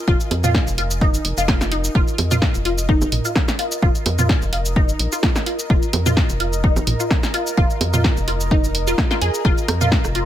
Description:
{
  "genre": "minimal techno",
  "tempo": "128 BPM",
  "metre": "4/4",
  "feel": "swing 54% on 16ths",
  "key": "F minor",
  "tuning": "A4 = 440 Hz",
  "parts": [
    { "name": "airy breathy pad", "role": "texture", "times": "0.0-10.3 s", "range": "Bb4 to Bb5", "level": "-30 LUFS", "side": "right 1 dB", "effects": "chorus, sidechain pumping" },
    { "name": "resonant blip pluck", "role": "riff", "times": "0.1-10.2 s", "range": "Eb4 to Ab4", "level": "-24 LUFS", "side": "left 1 dB", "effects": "phaser, ensemble chorus, sidechain pumping, tape echo" },
    { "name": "rubbery square bass", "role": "bass", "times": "0.1-10.3 s", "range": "Eb1 to F2", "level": "-22 LUFS", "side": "equal", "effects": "sidechain pumping" },
    { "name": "electronic kick drum", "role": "drums", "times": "0.1-10.0 s", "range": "none", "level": "-18 LUFS", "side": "equal", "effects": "none" },
    { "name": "punchy analog drum machine", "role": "drums", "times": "0.2-10.3 s", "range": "hi-hat, shaker, snare drum", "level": "-23 LUFS", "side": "equal", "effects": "none" },
    { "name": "techno drum kit", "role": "percussion", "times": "0.3-10.1 s", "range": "bongos, rim click, toms", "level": "-23 LUFS", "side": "right 3 dB", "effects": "overdrive" }
  ],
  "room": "little or no reverb",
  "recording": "none",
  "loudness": "-16 LUFS",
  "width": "side -12 dB against mid",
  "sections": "0.0-10.3 A section",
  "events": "none",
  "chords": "0.0 Fm"
}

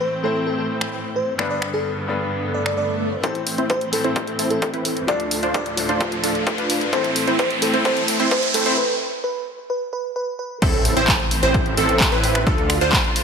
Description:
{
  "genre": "EDM, festival progressive house",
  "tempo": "130 BPM",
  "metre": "4/4",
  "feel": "straight",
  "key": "A minor",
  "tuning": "A4 = 440 Hz",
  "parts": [
    { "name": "bell-like FM electric piano", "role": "melody", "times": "0.0-10.6 s", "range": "A4 to D5", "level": "-25 LUFS", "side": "equal", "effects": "chorus, digital delay" },
    { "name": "bright baby grand piano", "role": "accompaniment", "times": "0.0-8.8 s", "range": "G2 to C5", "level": "-28 LUFS", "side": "left 5 dB", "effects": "sidechain pumping, digital delay" },
    { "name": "rich studio string section", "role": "sustained chords", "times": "0.0-13.2 s", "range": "D2 to F4", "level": "-28 LUFS", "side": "right 1 dB", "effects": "sidechain pumping" },
    { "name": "big-room dance drum kit", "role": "drums", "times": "0.8-13.2 s", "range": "crash cymbal, finger snaps, handclaps, hi-hat", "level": "-23 LUFS", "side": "equal", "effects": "high-pass filter on snare, small room ambience, high-pass filter on hats, high-pass filter on cymbals" },
    { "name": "swell, riser and impact", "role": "sound effects", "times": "2.4-12.5 s", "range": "none", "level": "-26 LUFS", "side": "right 1 dB", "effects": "none" },
    { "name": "supersaw stab", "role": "riff", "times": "3.2-13.0 s", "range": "C4 to C5", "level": "-24 LUFS", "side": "right 1 dB", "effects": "sidechain pumping, low-pass filter, digital delay" },
    { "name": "electronic kick drum", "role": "drums", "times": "3.2-13.0 s", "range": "none", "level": "-23 LUFS", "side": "equal", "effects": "overdrive, high-pass filter on kick, small room ambience, high-pass filter on room" },
    { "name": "plucky unison lead", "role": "arpeggios", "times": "10.6-13.0 s", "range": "A4 to C5", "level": "-23 LUFS", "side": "right 1 dB", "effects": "phaser, sidechain pumping, digital delay" },
    { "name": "wide detuned saw bass", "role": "bass", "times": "10.6-13.0 s", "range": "A1 to D2", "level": "-24 LUFS", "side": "equal", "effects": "chorus, sidechain pumping" }
  ],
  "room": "moderate lush hall reverb, RT60 1.8 s",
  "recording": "high-pass filter",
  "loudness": "-18 LUFS",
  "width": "side -6 dB against mid",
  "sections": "0.0-3.2 A section; 3.2-10.6 B section; 10.6-13.2 C section",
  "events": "swell 2.4-3.2; build-up 3.2-10.6; filter sweep on supersaw synth 3.2-10.6; riser 4.8-8.8; drum fill 6.9-8.8; break 8.8-10.6; drop 10.6-13.2; impact 10.6-12.5",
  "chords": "0.0 Am; 1.4 G; 3.2 Am; 5.1 Dm; 6.9 Am; 8.8 N.C.; 10.6 Am; 12.5 Dm"
}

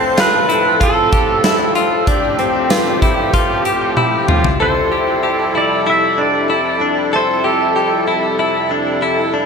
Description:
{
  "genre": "dream pop",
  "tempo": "95 BPM",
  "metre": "4/4",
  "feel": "straight",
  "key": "unclear",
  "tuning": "A4 = 438 Hz",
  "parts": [
    { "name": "pedal steel guitar", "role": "melody", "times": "0.0-8.0 s", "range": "A4 to E5", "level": "-18 LUFS", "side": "right 1 dB", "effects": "digital delay" },
    { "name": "musette accordion", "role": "sustained chords", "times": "0.0-9.5 s", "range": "F2 to A4", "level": "-19 LUFS", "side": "right 2 dB", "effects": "stereo widening" },
    { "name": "direct-recorded clean electric guitar", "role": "arpeggios", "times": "0.0-9.5 s", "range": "C4 to A4", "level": "-17 LUFS", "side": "left 4 dB", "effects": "wide subtle chorus, digital delay" },
    { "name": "shimmering bell with halo", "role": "texture", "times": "0.0-8.0 s", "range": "B4 to C7", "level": "-29 LUFS", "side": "equal", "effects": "ensemble chorus, digital delay" },
    { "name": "huge arena drum kit", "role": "drums", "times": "0.2-4.6 s", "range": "hi-hat, kick drum, snare drum, tambourine, toms", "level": "-18 LUFS", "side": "equal", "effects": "none" }
  ],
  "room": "moderate huge ambient reverb, RT60 6.5 s",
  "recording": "none",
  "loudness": "-12 LUFS",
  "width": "side -5 dB against mid",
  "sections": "0.0-4.6 A section; 4.6-9.5 B section",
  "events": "drum fill 4.0-4.6",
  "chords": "0.0 F; 4.6 Am7/F"
}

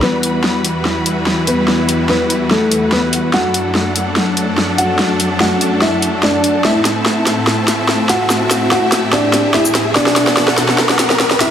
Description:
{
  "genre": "heavy wobble dubstep",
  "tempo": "145 BPM",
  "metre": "4/4",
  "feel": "swing 53% on 16ths, half-time",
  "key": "E minor",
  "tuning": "A4 = 438 Hz",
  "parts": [
    { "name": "dark grand piano", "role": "melody", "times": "0.0-11.5 s", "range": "A3 to F#5", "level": "-17 LUFS", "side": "left 1 dB", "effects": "digital delay" },
    { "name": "supersaw chords", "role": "sustained chords", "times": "0.0-11.5 s", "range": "E2 to F#5", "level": "-19 LUFS", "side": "equal", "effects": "none" },
    { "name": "dubstep drum kit", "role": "drums", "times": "0.0-11.5 s", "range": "hi-hat, shaker, snare drum", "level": "-16 LUFS", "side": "equal", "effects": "high-pass filter on hats, high-pass filter on snare, high-pass filter on perc" },
    { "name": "riser", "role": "sound effects", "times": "3.7-11.5 s", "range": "none", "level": "-22 LUFS", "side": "equal", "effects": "none" },
    { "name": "warm studio string section", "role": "texture", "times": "0.0-11.5 s", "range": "F#3 to B5", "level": "-21 LUFS", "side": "left 1 dB", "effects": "none" }
  ],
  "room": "moderate plate reverb, RT60 1.6 s",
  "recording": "none",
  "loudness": "-12 LUFS",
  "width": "side -9 dB against mid",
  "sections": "0.0-11.5 A section",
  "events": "build-up 0.0-11.5; drum fill 0.0-11.5; riser 3.7-11.5",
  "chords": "0.0 Emadd9; 3.3 D/F#; 6.6 Am; 10.0 Bm"
}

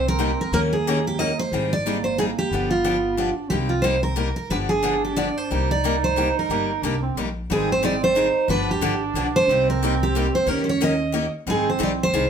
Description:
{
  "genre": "acoustic string swing (jazz manouche)",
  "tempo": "181 BPM",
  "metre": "3/4",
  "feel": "swing 60% on 8ths",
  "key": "C minor",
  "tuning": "A4 = 440 Hz",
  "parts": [
    { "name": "picked steel-string acoustic guitar", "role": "melody", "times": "0.0-12.3 s", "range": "F4 to Eb5", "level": "-22 LUFS", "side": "right 1 dB", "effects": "none" },
    { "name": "warm bass clarinet", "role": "second line", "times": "0.0-12.2 s", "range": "Ab3 to Eb4", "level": "-27 LUFS", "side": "right 7 dB", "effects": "none" },
    { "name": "upright bass", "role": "bass", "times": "0.0-12.3 s", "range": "G1 to Eb2", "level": "-28 LUFS", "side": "left 1 dB", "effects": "none" },
    { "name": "picked steel-string acoustic guitar", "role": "accompaniment", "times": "0.2-12.2 s", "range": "C3 to Bb4", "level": "-26 LUFS", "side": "left 5 dB", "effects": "none" }
  ],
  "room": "wet studio reverb, RT60 0.6 s",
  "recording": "band playing live in one room",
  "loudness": "-19 LUFS",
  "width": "side -7 dB against mid",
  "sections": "0.0-7.5 A section; 7.5-12.3 B section",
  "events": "none",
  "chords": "0.0 Cm7; 0.5 Eb7; 1.5 Abmaj7; 2.5 G7; 3.5 Cm7; 4.5 G7; 5.5 Cm7; 7.5 Abmaj7; 8.5 G7; 9.5 Cm7; 10.5 Eb7; 11.5 Abmaj7"
}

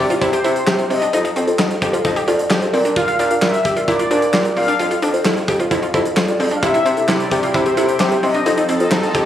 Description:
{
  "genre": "synth-pop",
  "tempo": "131 BPM",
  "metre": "4/4",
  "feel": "straight",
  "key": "unclear",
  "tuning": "A4 = 440 Hz",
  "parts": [
    { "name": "mellow synth brass", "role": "melody", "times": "0.0-8.7 s", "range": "C5 to F5", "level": "-21 LUFS", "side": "left 2 dB", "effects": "chorus, analog delay" },
    { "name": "analog pluck", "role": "arpeggios", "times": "0.0-9.2 s", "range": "C4 to G4", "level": "-22 LUFS", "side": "equal", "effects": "chorus, analog delay" },
    { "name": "warm bassoon", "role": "bass", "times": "0.0-9.3 s", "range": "F2 to C3", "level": "-20 LUFS", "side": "equal", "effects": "none" },
    { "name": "muted felt-like synth keys", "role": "accompaniment", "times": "0.1-9.1 s", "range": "E4 to D5", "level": "-22 LUFS", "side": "equal", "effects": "chorus" },
    { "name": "huge arena drum kit", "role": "drums", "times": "0.1-9.3 s", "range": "handclaps, hi-hat, kick drum, snare drum", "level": "-22 LUFS", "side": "equal", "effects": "none" },
    { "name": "lush unison pad", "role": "sustained chords", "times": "6.6-9.3 s", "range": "C3 to A4", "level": "-22 LUFS", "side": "equal", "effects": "chorus" }
  ],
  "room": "light reverb",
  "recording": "recorded on a phone in the room, club reverb, compression",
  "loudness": "-14 LUFS",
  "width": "side -11 dB against mid",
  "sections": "0.0-9.3 A section",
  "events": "none",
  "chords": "0.0 C; 1.1 F7; 2.7 Bb; 4.8 F; 6.6 C; 8.5 F7"
}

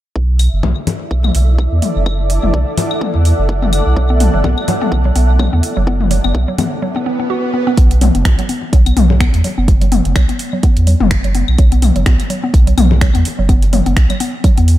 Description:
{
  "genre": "minimal techno",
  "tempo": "126 BPM",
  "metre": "4/4",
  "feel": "swing 56% on 16ths",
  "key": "B minor",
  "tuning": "A4 = 441 Hz",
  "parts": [
    { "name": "saturated sub bass", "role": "bass", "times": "0.2-14.8 s", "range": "F#1 to E2", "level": "-12 LUFS", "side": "equal", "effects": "sidechain pumping" },
    { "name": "electronic kick drum", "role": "drums", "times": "0.2-14.5 s", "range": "none", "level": "-13 LUFS", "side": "equal", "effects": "high-pass filter on kick" },
    { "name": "flickering grainy texture", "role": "texture", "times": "0.5-6.8 s", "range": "E5", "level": "-28 LUFS", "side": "right 5 dB", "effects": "built-in reverb, wide subtle chorus, sidechain pumping" },
    { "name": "granular cloud pad", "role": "texture", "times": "1.0-6.8 s", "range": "E4 to F#5", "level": "-22 LUFS", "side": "equal", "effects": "built-in reverb, sidechain pumping" },
    { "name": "house drum kit", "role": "drums", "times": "0.4-14.8 s", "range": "finger snaps, hi-hat", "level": "-25 LUFS", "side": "right 2 dB", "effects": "none" },
    { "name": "electronic claves, toms and congas", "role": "percussion", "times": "0.4-14.2 s", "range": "none", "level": "-20 LUFS", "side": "left 5 dB", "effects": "ping-pong delay" },
    { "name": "mallet-like synth pluck", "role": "riff", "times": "4.0-14.6 s", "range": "F#3 to F#4", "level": "-20 LUFS", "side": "equal", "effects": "chorus, sidechain pumping, ping-pong delay" },
    { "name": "swell", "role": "sound effects", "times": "7.0-7.8 s", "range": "none", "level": "-22 LUFS", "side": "right 2 dB", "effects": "none" }
  ],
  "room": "light reverb",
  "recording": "none",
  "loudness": "-11 LUFS",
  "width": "side -14 dB against mid",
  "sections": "0.2-7.8 A section; 7.8-14.8 B section",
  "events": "swell 7.0-7.8",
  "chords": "0.2 Bsus4; 7.8 B5"
}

